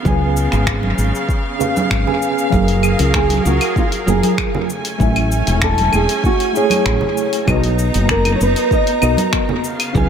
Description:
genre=sunset chillout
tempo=97 BPM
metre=4/4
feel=straight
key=unclear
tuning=A4 = 438 Hz
part: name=mellow tine electric piano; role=accompaniment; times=0.0-10.1 s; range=F#3 to G#5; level=-20 LUFS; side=equal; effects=medium stereo tremolo, auto-pan, analog delay
part: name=clear studio string section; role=sustained chords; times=0.0-10.1 s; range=C#3 to A#5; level=-24 LUFS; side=right 2 dB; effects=none
part: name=woody fretless electric bass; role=bass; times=0.1-10.1 s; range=E1 to C#2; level=-17 LUFS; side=equal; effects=lush chorus
part: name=deep house drum kit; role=drums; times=0.1-10.1 s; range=cabasa, claves, finger snaps, hi-hat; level=-23 LUFS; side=left 2 dB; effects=overdrive, analog delay
part: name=electronic kick drum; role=drums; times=0.1-10.1 s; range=none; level=-20 LUFS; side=equal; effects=overdrive
part: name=congas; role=percussion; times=0.1-10.1 s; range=none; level=-24 LUFS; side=right 2 dB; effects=analog delay
part: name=nylon-string guitar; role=melody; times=3.2-9.6 s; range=E#4 to D#5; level=-19 LUFS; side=right 2 dB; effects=analog delay
room=moderate spring reverb, RT60 2.4 s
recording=echo-heavy mix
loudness=-14 LUFS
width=side -8 dB against mid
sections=0.0-10.1 A section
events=none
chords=0.0 C#7; 2.5 F#maj9; 4.7 Amaj7; 7.5 Bmaj7

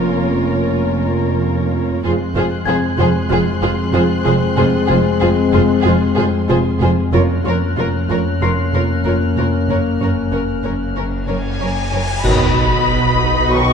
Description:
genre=cinematic, suspense film score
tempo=94 BPM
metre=4/4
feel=straight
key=F phrygian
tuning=A4 = 440 Hz
part: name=muted symphonic violin section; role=melody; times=0.0-13.7 s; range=C5 to Db6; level=-24 LUFS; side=left 4 dB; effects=none
part: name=muted symphonic violin section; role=second line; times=0.0-13.7 s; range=Ab4 to D#5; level=-24 LUFS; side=left 2 dB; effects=none
part: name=muted symphonic viola section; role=accompaniment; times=0.0-13.7 s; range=Db4 to F#4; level=-23 LUFS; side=right 2 dB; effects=none
part: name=mellow French horn section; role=sustained chords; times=0.0-13.7 s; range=F#3 to F#4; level=-20 LUFS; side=left 5 dB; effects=none
part: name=muted symphonic cello section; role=bass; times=0.0-13.7 s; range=F2 to B2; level=-22 LUFS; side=right 3 dB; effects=none
part: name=muted symphonic double bass section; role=bass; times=0.0-13.7 s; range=F1 to B1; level=-22 LUFS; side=right 4 dB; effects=none
part: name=deep rumbling drone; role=drone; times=0.0-13.7 s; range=Gb1 to F2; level=-22 LUFS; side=equal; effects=built-in reverb
part: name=celesta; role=texture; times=0.0-13.7 s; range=Ab5 to C7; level=-28 LUFS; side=left 5 dB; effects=none
part: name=muted symphonic violin section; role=texture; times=2.0-13.7 s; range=B5 to Gb6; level=-30 LUFS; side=left 4 dB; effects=none
part: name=cymbal swell, clash cymbals and concert bass drum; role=percussion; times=9.7-13.5 s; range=none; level=-24 LUFS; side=equal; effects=none
part: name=cymbal swell and sub drop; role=sound effects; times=11.3-13.7 s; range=none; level=-26 LUFS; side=equal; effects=none
part: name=bright trombone section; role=sustained chords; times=12.2-13.7 s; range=B2 to D#3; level=-22 LUFS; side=right 6 dB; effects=none
room=wet scoring stage reverb, RT60 1.7 s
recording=dark, warm production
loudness=-14 LUFS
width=side -6 dB against mid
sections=0.0-12.2 A section; 12.2-13.7 B section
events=cymbal swell 11.3-12.2; band accent 12.2-12.9; impact 12.2-13.7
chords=0.0 Bbm/F; 2.0 Fm; 7.1 Bbm/F; 9.7 Gb; 12.2 B

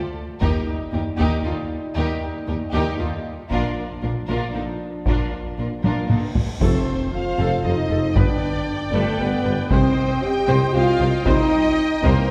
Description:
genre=cinematic, epic orchestral film score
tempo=116 BPM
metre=3/4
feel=straight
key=C dorian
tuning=A4 = 444 Hz
part: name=mellow French horn section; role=sustained chords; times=0.0-12.3 s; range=F3 to G4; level=-27 LUFS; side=equal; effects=none
part: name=rich symphonic violin section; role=melody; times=0.4-12.3 s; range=A4 to G5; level=-36 LUFS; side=equal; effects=none
part: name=rich symphonic violin section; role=second line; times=0.4-12.3 s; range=Eb4 to G5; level=-32 LUFS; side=equal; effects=none
part: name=rich symphonic viola section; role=accompaniment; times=0.4-12.3 s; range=D4 to Eb5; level=-32 LUFS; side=equal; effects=none
part: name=rich symphonic double bass section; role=bass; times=0.4-12.1 s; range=F1 to Eb2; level=-29 LUFS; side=equal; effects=none
part: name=warm symphonic cello section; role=bass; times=0.4-12.1 s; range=Eb2 to C3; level=-29 LUFS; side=equal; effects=none
part: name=solo taiko drums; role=drums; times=0.4-12.3 s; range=none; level=-26 LUFS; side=equal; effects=none
part: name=cymbal swell and impact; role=sound effects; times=6.1-8.2 s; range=none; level=-36 LUFS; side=equal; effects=none
part: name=clear trombone section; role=sustained chords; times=6.6-11.5 s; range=D3 to B3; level=-38 LUFS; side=equal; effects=none
part: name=mellow tuba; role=bass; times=6.6-12.1 s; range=F1 to C2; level=-30 LUFS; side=equal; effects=none
part: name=timpani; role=percussion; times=8.2-8.9 s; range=G2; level=-34 LUFS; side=equal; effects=none
room=wet scoring stage reverb, RT60 2.0 s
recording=heard from further back in the room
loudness=-21 LUFS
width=mono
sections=0.0-6.6 A section; 6.6-12.3 B section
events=build-up 0.0-6.6; drum fill 5.8-6.6, 12.0; cymbal swell 6.1-6.6; impact 6.6-8.2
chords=0.4 Eb; 3.5 Bb; 6.6 F; 8.2 G; 9.7 Cm

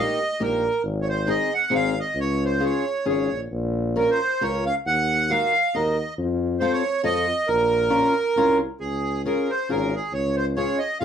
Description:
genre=alpine folk, alpine dance band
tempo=136 BPM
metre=3/4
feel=swing 55% on 8ths, rubato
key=Bb minor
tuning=A4 = 440 Hz
part: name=accordion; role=melody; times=0.0-11.0 s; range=Ab4 to Gb5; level=-23 LUFS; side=right 2 dB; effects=none
part: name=fingerpicked steel-string acoustic guitar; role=accompaniment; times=0.0-11.0 s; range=Bb3 to Bb4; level=-24 LUFS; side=left 2 dB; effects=none
part: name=mellow tuba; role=bass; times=0.0-11.0 s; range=Ab1 to F2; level=-27 LUFS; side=left 1 dB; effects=none
room=wet small room ambience, RT60 0.5 s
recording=band playing live in one room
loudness=-20 LUFS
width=side -8 dB against mid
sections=0.0-8.8 A section; 8.8-11.0 B section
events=none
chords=0.0 Eb/Bb; 0.8 Ab; 2.2 Db; 3.5 Bbm; 4.9 Ebm; 6.2 F7; 7.5 Bbm; 8.8 Db

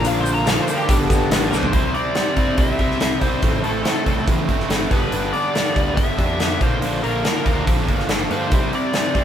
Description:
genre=classic rock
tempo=142 BPM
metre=4/4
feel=straight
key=C mixolydian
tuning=A4 = 437 Hz
part: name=biting lead guitar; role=melody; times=0.0-9.2 s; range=G4 to Bb5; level=-25 LUFS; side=left 2 dB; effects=wah, overdrive
part: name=picked twelve-string acoustic guitar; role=accompaniment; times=0.0-1.8 s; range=Bb2 to Bb4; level=-29 LUFS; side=left 1 dB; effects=none
part: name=mellow tonewheel organ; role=sustained chords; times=0.0-1.7 s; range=Bb3 to Bb4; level=-31 LUFS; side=left 1 dB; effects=none
part: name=overdriven semi-hollow guitar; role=riff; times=0.0-9.2 s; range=G2 to E4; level=-22 LUFS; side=right 1 dB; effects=none
part: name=fuzz picked electric bass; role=bass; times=0.0-9.2 s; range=G1 to G2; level=-26 LUFS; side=equal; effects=overdrive
part: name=big rock drum kit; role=drums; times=0.0-9.2 s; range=hi-hat, kick drum, snare drum, toms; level=-20 LUFS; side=equal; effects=none
part: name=tube shaker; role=percussion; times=0.0-1.7 s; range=none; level=-36 LUFS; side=left 7 dB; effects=none
room=light reverb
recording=band playing live in one room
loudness=-17 LUFS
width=side -9 dB against mid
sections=0.0-1.7 A section; 1.7-9.2 B section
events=lead electric guitar solo 0.0-1.7; drum fill 1.5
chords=0.0 Bb; 0.9 Gadd9; 1.7 C; 3.4 Am; 4.9 G6; 6.6 Bb; 8.5 C

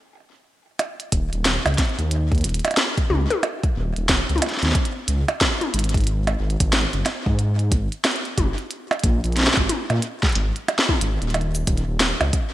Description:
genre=IDM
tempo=91 BPM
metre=4/4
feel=swing 62% on 16ths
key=Eb minor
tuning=A4 = 439 Hz
part: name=glitchy drum kit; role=drums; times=0.8-12.5 s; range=cabasa, hi-hat, percussion blips, snare drum, toms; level=-22 LUFS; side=equal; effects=small room ambience, gated reverb, digital delay
part: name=dark detuned saw bass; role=bass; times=1.1-12.3 s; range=Eb1 to Bb2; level=-22 LUFS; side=equal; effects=none
part: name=electronic kick drum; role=drums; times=1.1-12.5 s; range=none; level=-22 LUFS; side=equal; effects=small room ambience
room=light reverb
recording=bright 1980s-style digital production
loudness=-19 LUFS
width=side -14 dB against mid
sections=0.8-12.5 A section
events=stop 0.0-0.8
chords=none

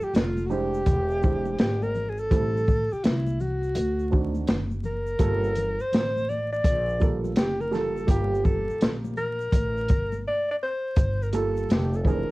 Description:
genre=hip hop, jazz-hop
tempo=83 BPM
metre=4/4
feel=swing 66% on 16ths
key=G dorian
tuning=A4 = 441 Hz
part: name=breathy alto saxophone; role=melody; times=0.0-12.3 s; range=E4 to D5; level=-28 LUFS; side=equal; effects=cassette tape
part: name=dark upright piano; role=accompaniment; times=0.0-12.3 s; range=Eb3 to C5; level=-30 LUFS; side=right 5 dB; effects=cassette tape
part: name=upright bass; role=bass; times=0.0-12.3 s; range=E1 to D2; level=-29 LUFS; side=equal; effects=none
part: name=egg shaker and congas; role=percussion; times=0.0-12.3 s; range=none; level=-40 LUFS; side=left 5 dB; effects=none
part: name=open jazz drum kit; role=drums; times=0.1-12.3 s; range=hi-hat, kick drum, shaker, snare drum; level=-24 LUFS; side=equal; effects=vintage 12-bit sampler grit, cassette tape
room=light reverb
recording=home recording on cassette, vinyl crackle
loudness=-22 LUFS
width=side -20 dB against mid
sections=0.0-11.0 A section; 11.0-12.3 B section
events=break 10.3-11.0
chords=0.0 Gm9; 0.9 E7alt; 2.3 Am7; 3.8 D7b9; 5.2 Gm9

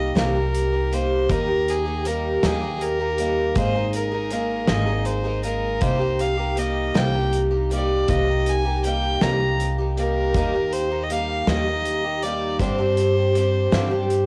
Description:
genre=indie folk with a building arrangement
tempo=53 BPM (dotted quarters)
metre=6/8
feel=straight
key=C minor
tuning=A4 = 440 Hz
part: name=rich fiddle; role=melody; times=0.0-14.3 s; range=Ab4 to Bb5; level=-28 LUFS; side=equal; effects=none
part: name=picked twelve-string acoustic guitar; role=accompaniment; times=0.0-14.3 s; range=G2 to Ab4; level=-26 LUFS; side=equal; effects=none
part: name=upright bass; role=bass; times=0.0-14.3 s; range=Ab1 to G2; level=-28 LUFS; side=equal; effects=none
part: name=loose indie drum kit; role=drums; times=0.2-14.3 s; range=hi-hat, kick drum, snare drum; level=-29 LUFS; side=equal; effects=cassette tape
room=small room ambience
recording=home recording on cassette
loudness=-22 LUFS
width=mono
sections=0.0-14.3 A section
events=none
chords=0.0 Cm7; 1.3 Eb; 3.6 Absus2; 5.8 Cm7; 10.3 Eb; 12.6 Gsus4

